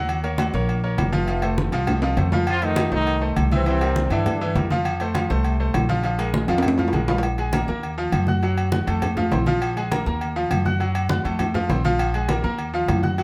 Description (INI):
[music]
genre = latin, salsa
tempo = 202 BPM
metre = 4/4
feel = straight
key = unclear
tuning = A4 = 442 Hz
[part]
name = bright baby grand piano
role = accompaniment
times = 0.0-13.2 s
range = E3 to Gb6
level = -28 LUFS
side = equal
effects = none
[part]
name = upright bass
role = bass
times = 0.0-13.2 s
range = F1 to G2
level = -26 LUFS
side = equal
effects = none
[part]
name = agogo bells and timbales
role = percussion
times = 0.1-13.2 s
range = none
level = -30 LUFS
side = equal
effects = none
[part]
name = congas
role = percussion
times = 0.1-13.2 s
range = none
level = -29 LUFS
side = equal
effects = none
[part]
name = brilliant trombone section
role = melody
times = 2.5-4.5 s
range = C3 to F4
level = -27 LUFS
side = equal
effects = plate reverb
[sound]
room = moderate studio reverb, RT60 0.8 s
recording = none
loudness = -22 LUFS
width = mono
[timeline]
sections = 0.0-7.2 A section; 7.2-13.2 B section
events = drum fill 2.0-2.5, 6.5-7.2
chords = 0.1 Ebm7; 1.3 F7; 3.7 C7; 4.9 F; 6.0 Bb5; 7.2 Bb7sus4; 7.8 Ebmadd9; 8.4 Gbmmaj7; 9.0 F; 9.6 Bb5; 10.2 Ebmadd9; 10.8 Gbmmaj7; 11.4 F; 12.0 Bb5; 12.6 Ebmadd9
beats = | 0.09 0.39 0.69 0.98 | 1.28 1.58 1.88 2.17 | 2.47 2.77 3.07 3.37 | 3.66 3.96 4.26 4.56 | 4.85 5.15 5.45 5.75 | 6.04 6.34 6.64 6.94 | 7.24 7.53 7.83 8.13 | 8.43 8.72 9.02 9.32 | 9.62 9.92 10.21 10.51 | 10.81 11.11 11.40 11.70 | 12.00 12.30 12.60 12.89 | 13.19